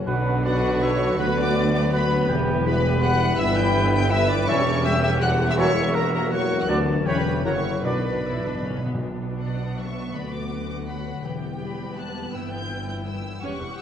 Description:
classical, dramatic, fast romantic movement for symphony orchestra; 163 BPM; 3/4; rubato; B minor; A4 = 443 Hz
concert harp; arpeggios; 0.0-13.8 s; F#2 to C#5; -30 LUFS; left 8 dB
clear symphonic cello section; bass; 0.0-13.7 s; D2 to B2; -30 LUFS; right 2 dB
rich symphonic double bass section; bass; 0.0-13.7 s; E1 to D2; -29 LUFS; right 2 dB
warm tuba; bass; 0.0-8.8 s; E1 to D2; -29 LUFS; right 3 dB
clear oboe; second line; 0.1-8.8 s; D5 to B5; -30 LUFS; right 2 dB
rich studio viola section; accompaniment; 0.1-13.8 s; G3 to G4; -32 LUFS; right 1 dB
dark French horn section; sustained chords; 0.1-8.0 s; A#3 to F#4; -30 LUFS; left 4 dB
mellow trombone section; sustained chords; 0.1-8.0 s; F#2 to G3; -30 LUFS; right 3 dB
dark trumpet section; stabs; 0.1-8.0 s; B4 to E5; -29 LUFS; equal
rich symphonic violin section; melody; 0.4-13.8 s; F#5 to G6; -33 LUFS; left 1 dB
bright silver concert flute; second line; 0.4-8.8 s; F#4 to G5; -30 LUFS; left 2 dB
rich symphonic violin section; second line; 0.5-13.8 s; F#4 to A5; -32 LUFS; left 4 dB
timpani; percussion; 7.8-9.0 s; B2; -32 LUFS; equal
moderate scoring stage reverb, RT60 2.0 s; worn, warbling old tape, cassette tape, warbly pitch drift; -20 LUFS; side -9 dB against mid
0.1-9.0 A section; 9.0-13.8 B section
timpani fill 7.8-9.0
0.1 Bm; 1.2 Bm/D; 2.3 Em; 3.4 Em/G; 4.5 C#dim/E; 5.6 F#7/E; 6.7 Bm/D; 7.1 C#m7b5/E; 7.4 F#7; 7.8 Bm; 10.1 Bm/D; 11.2 Em; 12.3 Em/G

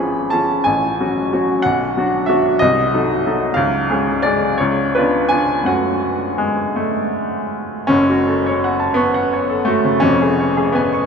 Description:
classical, romantic character piece for solo piano; 52-63 BPM (dotted quarters); 6/8; rubato; F# minor; A4 = 439 Hz
bright upright piano; solo; 0.0-11.1 s; E#1 to C#6; -15 LUFS; equal
wet cathedral reverb, RT60 6.8 s; in a vast, echoing space; -15 LUFS; side -6 dB against mid
0.0-7.9 A section; 7.9-11.1 B section
0.0 C#7/G#; 0.7 F#m/A; 1.6 Bm; 2.6 Cdim7; 3.6 C#; 4.6 C#7b9; 5.7 F#m; 10.1 C#/E#

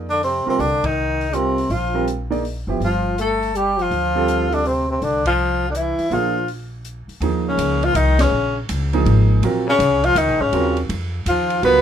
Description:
modal jazz; 163 BPM; 3/4; swing 66% on 8ths; Eb minor from 7.2 s; A4 = 445 Hz
warm concert grand piano; accompaniment; 0.0-11.8 s; F3 to D5; -22 LUFS; right 5 dB
upright bass; bass; 0.0-11.8 s; Gb1 to F2; -22 LUFS; equal
breathy tenor saxophone; melody; 0.1-11.8 s; C4 to Cb5; -19 LUFS; equal
brilliant trombone; second line; 0.1-11.8 s; C3 to Cb4; -25 LUFS; left 4 dB
open jazz drum kit; drums; 0.1-11.7 s; hi-hat, kick drum, ride cymbal, snare drum; -33 LUFS; equal
light reverb; minimal, uncompressed stereo recording; -17 LUFS; side -9 dB against mid
0.0-7.2 A section; 7.2-11.8 B section
band accent 0.8, 5.2, 8.1
0.0 F9sus4; 2.8 G9sus4; 6.1 Bb7; 7.2 Eb13sus4

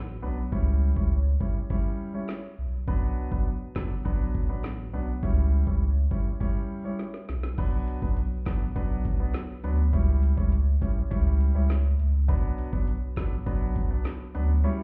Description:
dancehall; 102 BPM; 4/4; straight; B minor; A4 = 442 Hz
warm sub bass; bass; 0.0-14.6 s; F#1 to D2; -28 LUFS; equal
warm grand piano; accompaniment; 0.2-14.8 s; F#3 to C#5; -36 LUFS; equal
island pop drum kit; drums; 0.5-14.5 s; crash cymbal, handclaps, hi-hat, kick drum, snare drum; -31 LUFS; equal
little or no reverb; heard muffled through a wall, club reverb, EQ; -27 LUFS; mono
0.0-7.6 A section; 7.6-14.8 B section
drum fill 7.0-7.6; break 14.6
0.0 Bm; 0.5 C#dim; 2.9 Bm; 5.2 C#dim; 7.6 Bm; 9.9 C#dim; 12.3 Bm

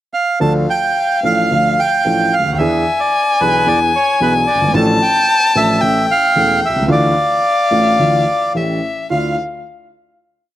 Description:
tango; 110 BPM; 4/4; rubato; D minor; A4 = 441 Hz
bandoneon; melody; 0.1-9.4 s; B4 to A5; -16 LUFS; right 3 dB; slapback echo
warm violin; second line; 0.4-9.4 s; E5 to A5; -16 LUFS; left 3 dB; slapback echo
warm concert grand piano; accompaniment; 0.4-9.3 s; E1 to A4; -17 LUFS; right 1 dB; slapback echo
little or no reverb; recorded outdoors, with no room sound; -12 LUFS; side -13 dB against mid
0.0-0.4 pickup bar; 0.4-9.1 A section; 9.1-10.6 final chord
0.4 Dm; 2.6 E7; 4.7 Dm/A; 5.8 A; 6.9 Dmadd9; 8.6 A7; 9.1 Dmadd9

